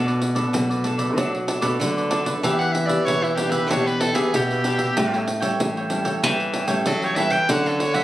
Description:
samba and choro; 95 BPM; 4/4; straight; A4 = 440 Hz
cavaquinho; accompaniment; 0.0-8.0 s; D4 to G5; -26 LUFS; right 2 dB
nylon-string guitar; accompaniment; 0.0-8.0 s; A2 to G4; -27 LUFS; left 2 dB
nylon-string guitar; bass; 0.0-8.0 s; A2 to F#3; -24 LUFS; equal
pandeiro; percussion; 0.1-8.0 s; -27 LUFS; right 1 dB
edgy soprano saxophone; melody; 2.6-8.0 s; E4 to G5; -23 LUFS; equal; plate reverb
moderate studio reverb, RT60 0.7 s; recorded on a phone in the room, studio reverb, compression; -19 LUFS; side -14 dB against mid
0.0-8.0 A section
soprano saxophone solo 0.0-8.0
0.0 Bm7; 2.4 Em7; 5.0 A7; 7.5 Dmaj7

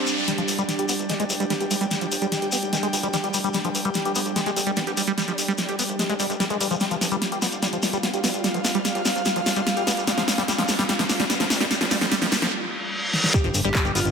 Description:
psychedelic trance; 147 BPM; 4/4; straight; A4 = 442 Hz
overdriven synth lead; melody; 0.0-0.1, 13.3-14.0 s; F4 to G4; -32 LUFS; right 2 dB; distortion, chorus, phaser, sidechain pumping, dub echo
pulsing gated texture; sustained chords; 0.0-14.1 s; G3 to G4; -31 LUFS; equal; chorus, built-in reverb, sidechain pumping
riser, reverse cymbal and impact; sound effects; 0.0-0.3, 8.6-14.1 s; -28 LUFS; equal
airy breathy pad; texture; 0.0-14.1 s; D4 to G5; -31 LUFS; right 1 dB; chorus, sidechain pumping
shekere; percussion; 0.1-14.1 s; -30 LUFS; left 4 dB
liquid acid bass; riff; 0.3-14.0 s; F3 to G4; -27 LUFS; moving between left 6 dB and right 6 dB; phaser, auto-pan, sidechain pumping, digital delay
big-room dance drum kit; drums; 0.3-14.1 s; handclaps, hi-hat, snare drum; -25 LUFS; equal; low-pass filter on snare, low-pass filter on hats
fat analog bass; bass; 0.4-14.1 s; F1 to Ab1; -34 LUFS; equal; high-pass filter
formant-sweep wobble bass; second line; 1.5-12.3 s; F3 to B3; -40 LUFS; right 1 dB
electronic kick drum; drums; 13.3-13.8 s; -22 LUFS; equal
moderate lush hall reverb, RT60 1.6 s; -21 LUFS; side -6 dB against mid
0.3-13.3 A section
riser 0.0, 8.6-12.5; build-up 0.3-13.3; drum fill 0.3-12.5, 13.1; filter sweep on acid bass 0.3-13.3; filter sweep on synth texture 0.3-13.3; reverse cymbal 12.5-13.3; impact 13.3-14.1
0.3 G5

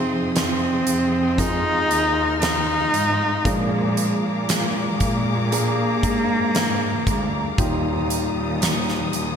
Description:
pop ballad; 58 BPM; 4/4; straight; A4 = 439 Hz
dark cello; melody; 0.0-9.4 s; G3 to Eb4; -22 LUFS; equal
warm concert grand piano; accompaniment; 0.0-9.4 s; Bb2 to Ab4; -27 LUFS; equal; lush chorus
warm studio string section; sustained chords; 0.0-9.4 s; G4 to F6; -29 LUFS; left 1 dB
dark symphonic cello section; bass; 0.0-9.4 s; D2 to Bb2; -27 LUFS; equal
huge arena drum kit; drums; 0.4-9.4 s; hi-hat, kick drum, snare drum; -25 LUFS; right 1 dB; gated reverb
moderate lush hall reverb, RT60 2.8 s; bright 1980s-style digital production; -18 LUFS; side -7 dB against mid
0.0-9.4 A section
0.0 Fm7; 3.5 Bb7; 7.6 Ebadd9

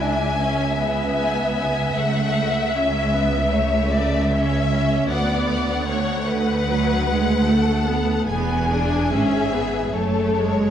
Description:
classical, slow romantic movement for string orchestra; 70-79 BPM; 4/4; rubato; A major; A4 = 441 Hz
warm symphonic violin section; melody; 0.0-10.7 s; C#5 to G#5; -27 LUFS; left 5 dB
warm symphonic violin section; second line; 0.0-10.7 s; G#4 to E5; -24 LUFS; left 3 dB
rich symphonic viola section; accompaniment; 0.0-10.7 s; F#3 to D4; -25 LUFS; right 1 dB
clear symphonic cello section; bass; 0.0-10.7 s; C#2 to G#2; -24 LUFS; right 2 dB
rich symphonic double bass section; bass; 0.0-10.7 s; E1 to D2; -26 LUFS; right 2 dB
moderate concert hall reverb, RT60 2.4 s; dark, warm production; -18 LUFS; side -9 dB against mid
0.0-10.7 A section
0.0 C#m; 1.9 A/C#; 5.1 Bm7/D; 8.3 E7; 9.9 F#m

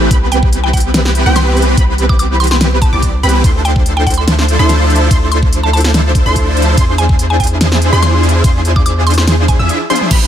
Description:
future bass; 144 BPM; 4/4; half-time; A4 = 440 Hz
wide unison pluck; arpeggios; 0.0-10.3 s; G5 to E6; -20 LUFS; right 1 dB; sidechain pumping
supersaw chords; riff; 0.0-10.3 s; E3 to E5; -15 LUFS; right 1 dB; ensemble chorus, sidechain pumping
long sustained 808-style bass; bass; 0.0-10.3 s; A1 to E2; -13 LUFS; equal; sidechain pumping
electronic kick drum; drums; 0.1-10.2 s; -12 LUFS; equal
pop drum kit; drums; 0.1-10.2 s; crash cymbal, hi-hat, ride cymbal, snare drum, toms; -18 LUFS; equal
mallet-like synth pluck; melody; 0.3-9.9 s; G5 to D6; -20 LUFS; equal; chorus, sidechain pumping, tape echo
digital ambience; -9 LUFS; side -10 dB against mid
0.0-10.1 A section
drop 0.0-10.1; break 9.7-10.1; drum fill 9.9
0.1 Cmaj7; 3.4 Dm9; 6.8 E7b9b13

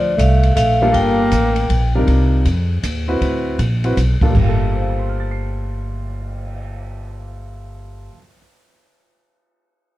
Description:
jazz, small-group swing and bop; 159 BPM; 3/4; swing 64% on 8ths; G minor; A4 = 441 Hz
vibraphone with medium hard mallets; melody; 0.0-1.9 s; D5 to G5; -19 LUFS; left 2 dB; plate reverb
breathy alto saxophone; second line; 0.0-1.9 s; F3 to Bb3; -20 LUFS; right 2 dB
upright bass; bass; 0.0-8.1 s; G1 to F2; -18 LUFS; equal
open jazz drum kit; drums; 0.2-6.5 s; crash cymbal, cymbal swell, hi-hat, kick drum, ride cymbal; -22 LUFS; equal
clear concert grand piano; accompaniment; 0.8-8.4 s; G2 to C7; -22 LUFS; left 1 dB
little or no reverb; dark, warm production; -14 LUFS; side -16 dB against mid
0.0-2.1 A section; 2.1-4.3 B section; 4.3-6.6 C section
0.0 Gm9; 2.1 Cm11; 3.2 D13; 4.3 Gm9

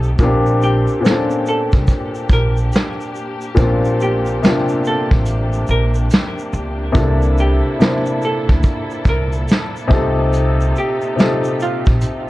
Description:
lo-fi hip hop; 71 BPM; 4/4; swing 64% on 16ths; Bb major; A4 = 440 Hz
felt-muted upright piano; accompaniment; 0.0-12.3 s; Bb2 to C5; -19 LUFS; left 2 dB; cassette tape, low-pass filter
dark studio string section; sustained chords; 0.0-12.3 s; Bb2 to A4; -27 LUFS; equal; low-pass filter
upright bass; bass; 0.0-12.0 s; A1 to D2; -18 LUFS; equal
vintage brush drum kit; drums; 0.0-12.3 s; hi-hat, kick drum, shaker, snare drum; -16 LUFS; equal
archtop guitar, miked and amplified; melody; 0.6-11.9 s; F4 to Bb4; -24 LUFS; right 2 dB; low-pass filter, tape echo
light reverb, small room reverb; cassette tape; -14 LUFS; side -17 dB against mid
0.0-12.3 A section
0.2 Bb69; 7.0 C13; 9.9 F9/C

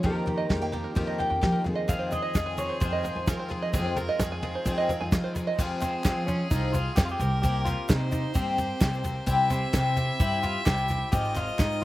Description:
indie folk with a building arrangement; 130 BPM; 4/4; straight; F minor; A4 = 440 Hz
electric guitar through a small old amp; melody; 0.0-11.8 s; C4 to G5; -32 LUFS; equal; harmonic tremolo
fingerpicked steel-string acoustic guitar; accompaniment; 0.0-3.7 s; F2 to Ab4; -34 LUFS; left 1 dB
picked twelve-string acoustic guitar; accompaniment; 0.0-11.8 s; F2 to G4; -33 LUFS; left 4 dB
open-back banjo; arpeggios; 0.0-5.6 s; G4 to Ab5; -32 LUFS; right 5 dB; slapback echo
upright bass; bass; 0.0-11.8 s; Ab1 to F3; -30 LUFS; equal
soft brush drum kit; drums; 0.0-11.7 s; crash cymbal, kick drum, snare drum, toms; -26 LUFS; equal
clear fiddle; second line; 1.9-11.8 s; Eb4 to E5; -35 LUFS; equal; slapback echo
egg shaker; percussion; 1.9-11.8 s; -44 LUFS; right 6 dB
group handclap; percussion; 5.8-11.7 s; -42 LUFS; right 2 dB
little or no reverb; recorded outdoors, with no room sound; -24 LUFS; side -16 dB against mid
0.0-5.6 A section; 5.6-11.8 B section
0.0 Eb/F; 1.7 Ab/F; 5.6 Fm; 7.2 Cm7; 9.3 C; 11.1 Ab6

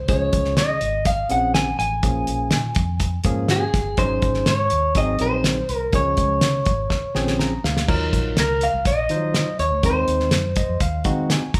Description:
uptempo 1960s-style soul; 123 BPM; 4/4; straight; Db major; A4 = 437 Hz
electric guitar through a small old amp; melody; 0.0-10.8 s; Ab4 to Ab5; -24 LUFS; equal
vintage muted fingered electric bass; bass; 0.0-11.6 s; G1 to Eb3; -28 LUFS; equal
barky tine electric piano; accompaniment; 0.1-11.6 s; Fb3 to Bb5; -29 LUFS; equal; overdrive
cloth-damped thuddy drum kit; drums; 0.1-11.6 s; crash cymbal, hi-hat, kick drum, snare drum; -24 LUFS; equal
moderate large studio reverb, RT60 1.1 s; band playing live in one room; -21 LUFS; mono
0.0-7.9 A section; 7.9-11.6 B section
drum fill 6.9-7.9; tine electric piano fill 7.2-7.9, 10.3-11.6
0.1 Dbmaj7; 2.0 Bbm7; 4.0 Ab7sus4; 5.0 Ab7; 5.9 Dbmaj7; 7.9 Ebmadd9; 9.8 Ab/Eb

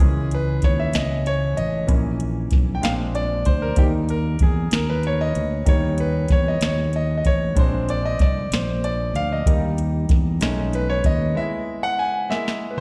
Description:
slow gospel; 63 BPM (dotted quarters); 6/8; straight; A4 = 440 Hz
clear concert grand piano; accompaniment; 0.0-12.8 s; E3 to G#5; -27 LUFS; equal; slapback echo
fingered electric bass; bass; 0.0-11.3 s; A1 to E2; -25 LUFS; equal
soft vintage rhythm box; drums; 0.0-12.8 s; hi-hat, kick drum, snare drum, toms; -22 LUFS; equal
little or no reverb; live gig heard through the venue's PA, recital hall reverb; -21 LUFS; mono
0.0-12.8 A section
grand piano solo 0.0-12.8; break 11.4-12.8; drum fill 12.3-12.8
0.0 C#m; 1.9 A#dim; 2.8 A#9; 3.8 D#; 7.6 A#7; 9.5 D#; 10.4 B13; 11.4 E

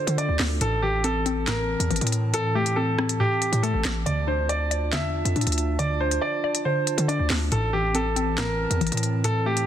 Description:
hip hop, drill; 139 BPM; 4/4; half-time; D minor; A4 = 442 Hz
bright concert grand piano; melody; 0.0-9.7 s; G4 to E5; -26 LUFS; right 1 dB; low-pass filter, tape echo
hollow square pluck; accompaniment; 0.0-9.7 s; A2 to D5; -29 LUFS; left 2 dB; chorus, low-pass filter
dark analog pad; sustained chords; 0.0-9.7 s; E3 to A5; -33 LUFS; right 1 dB; chorus
downlifter; sound effects; 0.0-0.6 s; barely audible
hard-hitting 808-style bass; bass; 0.1-9.7 s; A1 to D3; -26 LUFS; equal
drill drum kit; drums; 0.1-9.7 s; handclaps, hi-hat, rim click, snare drum; -28 LUFS; equal
light reverb; dense, heavily limited modern master; -22 LUFS; side -10 dB against mid
0.0-9.7 A section
0.0 Dm; 0.6 Am; 4.1 Dm; 7.5 Am

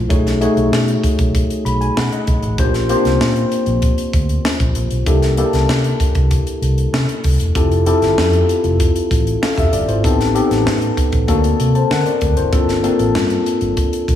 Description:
polished 1980s jazz-funk pop; 97 BPM; 4/4; straight; A4 = 440 Hz
tine electric piano; accompaniment; 0.0-14.2 s; A3 to B5; -17 LUFS; left 2 dB; overdrive, lush chorus
vintage muted fingered electric bass; bass; 0.0-14.2 s; E1 to D3; -18 LUFS; equal
crisp fusion drum kit; drums; 0.1-14.2 s; hi-hat, kick drum, snare drum; -19 LUFS; equal
moderate plate reverb, RT60 1.7 s; dreamy mix soaked in reverb, small room reverb; -14 LUFS; side -10 dB against mid
0.0-14.2 A section
tine electric piano fill 1.3-2.6
0.1 B13; 2.6 Bb69; 5.1 C13; 7.6 Fmaj9; 10.0 Am7b5; 11.3 D7b13; 12.5 Gm11

